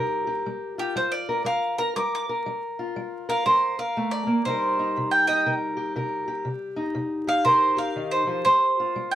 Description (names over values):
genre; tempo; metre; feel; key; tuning
acoustic country blues, solo or duo; 120 BPM; 4/4; swing 64% on 8ths; G minor; A4 = 440 Hz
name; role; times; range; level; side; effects
fingerpicked steel-string acoustic guitar; accompaniment; 0.0-9.2 s; C3 to Bb4; -27 LUFS; left 1 dB; none
bowl-back mandolin; melody; 0.8-9.2 s; G4 to D6; -22 LUFS; right 1 dB; none
room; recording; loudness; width
moderate small room reverb, RT60 0.6 s; vinyl crackle; -22 LUFS; side -12 dB against mid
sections
0.0-9.2 A section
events
mandolin solo 0.0-9.2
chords
0.4 Gm7; 4.4 Cm7; 8.4 Gm7